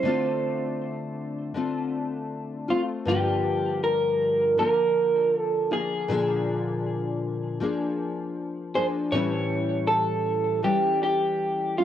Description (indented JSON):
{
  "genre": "indie pop",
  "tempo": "79 BPM",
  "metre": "4/4",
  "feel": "straight",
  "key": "G minor",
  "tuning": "A4 = 441 Hz",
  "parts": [
    { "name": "electric guitar through a small old amp", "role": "melody", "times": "0.0-11.8 s", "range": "F4 to C#5", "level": "-24 LUFS", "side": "right 2 dB", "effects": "lush chorus, tape echo" },
    { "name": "nylon-string guitar", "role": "accompaniment", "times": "0.0-11.8 s", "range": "G2 to Ab4", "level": "-28 LUFS", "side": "left 3 dB", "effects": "analog chorus, vibrato effect, cassette tape" }
  ],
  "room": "light reverb",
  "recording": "home recording on cassette",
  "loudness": "-23 LUFS",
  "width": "side -10 dB against mid",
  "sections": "0.0-11.8 A section",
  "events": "none",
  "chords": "0.0 Dm7; 3.1 Gm7; 6.1 Bb7; 9.1 A7"
}